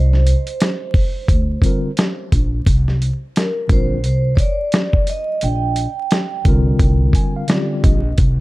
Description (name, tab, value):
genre	hip hop, jazz-hop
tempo	87 BPM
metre	4/4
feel	swing 59% on 16ths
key	unclear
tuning	A4 = 440 Hz
part	vibraphone with medium mallets	melody	0.0-6.4 s	Bb4 to G5	-24 LUFS	right 3 dB	tape echo
part	upright bass	bass	0.0-8.4 s	Bb1 to D2	-16 LUFS	equal	none
part	dusty soul sampler-style drum kit	drums	0.1-8.4 s	hi-hat, kick drum, snare drum	-16 LUFS	equal	none
part	mellow tine electric piano	accompaniment	1.6-8.2 s	D3 to Ab5	-21 LUFS	left 1 dB	fast stereo tremolo
room	small room reverb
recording	dark, warm production, vinyl crackle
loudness	-15 LUFS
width	side -19 dB against mid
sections	0.0-2.7 A section; 2.7-8.4 A section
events	tine electric piano fill 6.8-8.2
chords	0.0 Bb69